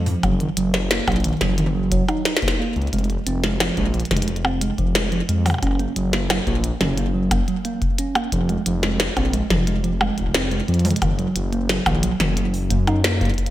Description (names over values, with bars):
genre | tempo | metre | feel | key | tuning
IDM | 89 BPM | 4/4 | straight | F phrygian | A4 = 440 Hz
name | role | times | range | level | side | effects
dark detuned saw bass | bass | 0.0-13.5 s | F1 to Gb2 | -23 LUFS | left 1 dB | none
mellow tine electric piano | arpeggios | 0.1-13.3 s | Eb3 to Eb4 | -24 LUFS | right 3 dB | digital delay
glitchy drum kit | drums | 0.1-13.5 s | hi-hat, percussion blips, snare drum, toms | -23 LUFS | equal | gated reverb, digital delay
electronic kick drum | drums | 0.2-13.3 s | none | -25 LUFS | left 1 dB | none
room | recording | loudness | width
light reverb, digital ambience | bright 1980s-style digital production | -18 LUFS | side -14 dB against mid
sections
0.0-13.5 A section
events
none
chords
0.2 Ebm/Gb; 2.9 Fm; 5.6 Gb; 8.3 Fm; 11.0 Ebm/Gb